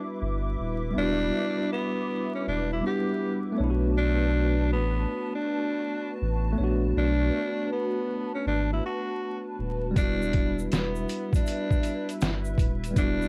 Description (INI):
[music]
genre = lo-fi hip hop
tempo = 80 BPM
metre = 4/4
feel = swing 66% on 16ths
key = unclear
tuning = A4 = 440 Hz
[part]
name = growling tenor saxophone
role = melody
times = 0.0-13.3 s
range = B3 to G4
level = -33 LUFS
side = equal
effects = none
[part]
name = tine electric piano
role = accompaniment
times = 0.0-13.3 s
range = G3 to F#5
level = -33 LUFS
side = equal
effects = medium tremolo, cassette tape
[part]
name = hollow soft pad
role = sustained chords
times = 0.0-13.3 s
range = E4 to D6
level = -39 LUFS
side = equal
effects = ensemble chorus
[part]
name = warm sub bass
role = bass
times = 0.2-13.3 s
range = D#1 to B1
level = -30 LUFS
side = equal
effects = none
[part]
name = lo-fi sampler-style drum kit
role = drums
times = 10.0-13.2 s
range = hi-hat, kick drum, snare drum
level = -28 LUFS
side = equal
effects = none
[part]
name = egg shaker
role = percussion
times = 10.0-13.3 s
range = none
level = -52 LUFS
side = equal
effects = none
[sound]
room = light reverb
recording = vinyl crackle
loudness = -27 LUFS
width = mono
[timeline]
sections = 0.0-13.3 A section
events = none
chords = 0.0 Em7; 3.6 Bm7; 10.0 Em7